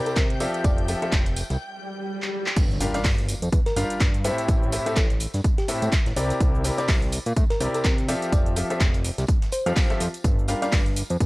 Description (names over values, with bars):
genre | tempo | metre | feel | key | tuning
piano house | 125 BPM | 4/4 | swing 58% on 16ths | G dorian | A4 = 440 Hz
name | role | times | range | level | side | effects
rich chamber string section | sustained chords | 0.0-2.6 s | G5 to G6 | -38 LUFS | equal | sidechain pumping
clear baby grand piano | riff | 0.0-10.7 s | A2 to F5 | -28 LUFS | left 1 dB | sidechain pumping, tape echo
bell-like FM electric piano | melody | 0.1-10.8 s | G4 to D5 | -32 LUFS | equal | chorus, tape echo
house drum kit | drums | 0.1-11.3 s | crash cymbal, handclaps, hi-hat, shaker | -30 LUFS | equal | small room reverb
tambourine | percussion | 0.1-11.3 s | none | -41 LUFS | equal | none
fat analog bass | bass | 0.2-11.3 s | F1 to C3 | -27 LUFS | equal | sidechain pumping
breakbeat sampler-style drum kit | drums | 0.2-11.3 s | hi-hat, snare drum, tambourine | -39 LUFS | equal | none
electronic kick drum | drums | 0.2-11.3 s | none | -21 LUFS | equal | small room reverb
swell and impact | sound effects | 1.8-4.5 s | none | -32 LUFS | equal | none
room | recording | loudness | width
digital ambience | dry, gritty hardware recording, cassette tape | -21 LUFS | side -21 dB against mid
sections
0.0-2.6 A section; 2.6-11.3 B section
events
break 1.6-2.6; swell 1.8-2.6; drum fill 2.2-2.6; band accent 2.4; drop 2.6-11.3; impact 2.6-4.5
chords
0.0 C9; 0.6 Fmaj9; 2.6 Gm7; 4.5 Am7; 6.2 C9; 8.3 Fmaj9; 10.2 Gm7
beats
0.17 | 0.65 1.12 1.60 2.08 | 2.56 3.04 3.52 4.00 | 4.49 4.96 5.45 5.92 | 6.41 6.88 7.37 7.84 | 8.32 8.80 9.29 9.77 | 10.24 10.72 11.21